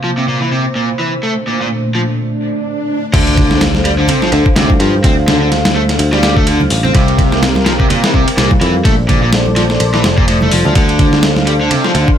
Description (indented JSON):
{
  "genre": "breakbeat, breaks",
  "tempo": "126 BPM",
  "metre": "4/4",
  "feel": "swing 57% on 16ths",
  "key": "D minor",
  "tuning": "A4 = 441 Hz",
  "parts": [
    { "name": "dark analog pad", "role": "sustained chords", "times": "0.0-12.2 s", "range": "Bb2 to F5", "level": "-19 LUFS", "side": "left 1 dB", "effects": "chorus, sidechain pumping" },
    { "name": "overdriven electric guitar", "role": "riff", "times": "0.0-12.1 s", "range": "A2 to C4", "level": "-16 LUFS", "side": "equal", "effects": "tape echo" },
    { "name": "swell and impact", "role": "sound effects", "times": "2.3-5.0 s", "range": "none", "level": "-21 LUFS", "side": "equal", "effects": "none" },
    { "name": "picked electric bass", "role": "bass", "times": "3.1-12.1 s", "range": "F1 to G2", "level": "-15 LUFS", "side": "equal", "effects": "tube saturation" },
    { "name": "dusty soul sampler-style drum kit", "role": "drums", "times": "3.1-12.2 s", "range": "crash cymbal, hi-hat, kick drum, ride cymbal, snare drum", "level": "-14 LUFS", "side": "equal", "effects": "overdrive" },
    { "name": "congas", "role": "percussion", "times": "3.4-11.8 s", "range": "none", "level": "-21 LUFS", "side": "right 4 dB", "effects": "none" }
  ],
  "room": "light reverb",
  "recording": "none",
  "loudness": "-10 LUFS",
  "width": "side -9 dB against mid",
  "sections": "0.0-3.1 A section; 3.1-12.2 B section",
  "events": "filter sweep on analog synth pad 0.0-3.1; break 2.2-3.1; swell 2.3-3.1; drop 3.1-12.2; impact 3.1-5.0",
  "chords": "0.0 C7sus4; 1.2 Bbmaj9; 3.1 Dm7; 6.9 C7sus4; 8.9 Bbmaj9; 10.8 Dm7"
}